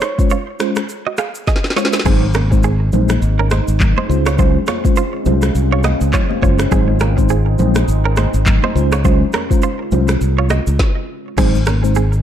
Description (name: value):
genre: afrobeats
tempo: 103 BPM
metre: 4/4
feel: swing 58% on 16ths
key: Db major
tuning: A4 = 440 Hz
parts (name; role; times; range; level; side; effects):
- direct-recorded clean electric guitar; riff; 0.0-12.2 s; C4 to F5; -23 LUFS; right 9 dB; digital delay
- afro-pop drum kit; drums; 0.0-12.2 s; crash cymbal, finger snaps, handclaps, kick drum, rim click, shaker, snare drum; -18 LUFS; equal; overdrive
- mellow tine electric piano; accompaniment; 0.2-12.0 s; Ab3 to C5; -20 LUFS; equal; medium stereo tremolo
- deep dark ambient pad; sustained chords; 2.8-12.2 s; C3 to F4; -24 LUFS; equal; chorus, built-in reverb
- modern bright fingered electric bass; bass; 2.1-12.2 s; Gb1 to Db2; -15 LUFS; equal; none
- congas; percussion; 2.1-11.8 s; none; -24 LUFS; left 6 dB; none
room: light reverb, digital ambience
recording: dark, warm production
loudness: -13 LUFS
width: side -10 dB against mid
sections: 0.0-2.1 A section; 2.1-11.4 B section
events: drum fill 1.5-2.1; stop 10.8-11.4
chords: 0.0 Dbmaj7; 2.1 Ab; 4.1 Dbmaj7; 6.7 Ab; 8.8 Dbmaj7; 11.4 Ab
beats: 0.31 0.89 1.47 | 2.06 2.64 3.22 3.80 | 4.39 4.97 5.55 6.13 | 6.72 7.30 7.88 8.46 | 9.05 9.63 10.21 10.79 | 11.38 11.96